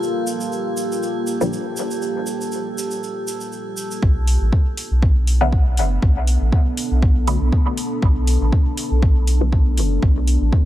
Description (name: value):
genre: dub techno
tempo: 120 BPM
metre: 4/4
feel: swing 54% on 16ths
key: unclear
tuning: A4 = 440 Hz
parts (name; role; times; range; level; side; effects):
- deep dark ambient pad; sustained chords; 0.0-10.7 s; Bb3 to A4; -25 LUFS; equal; chorus, built-in reverb, sidechain pumping
- egg shaker; percussion; 0.0-4.0 s; none; -32 LUFS; right 3 dB; none
- metallic inharmonic drone; texture; 0.0-4.0 s; A4; -34 LUFS; right 4 dB; chorus, built-in reverb, sidechain pumping
- filtered dub chord stab; stabs; 1.4-1.5, 5.4-9.5 s; Bb2 to B3; -27 LUFS; left 1 dB; phaser, sidechain pumping, dub echo
- soft dub sub bass; bass; 4.0-10.5 s; F#1 to B1; -17 LUFS; equal; sidechain pumping
- electronic kick drum; drums; 4.0-10.6 s; none; -16 LUFS; equal; studio reverb
- electronic hi-hat; drums; 4.3-10.4 s; none; -28 LUFS; equal; studio reverb
room: digital ambience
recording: none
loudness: -17 LUFS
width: side -14 dB against mid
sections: 0.0-4.0 A section; 4.0-10.7 B section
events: filter sweep on synth stab 0.0-4.0, 4.0-10.7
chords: 0.0 Gm7; 4.0 Bm7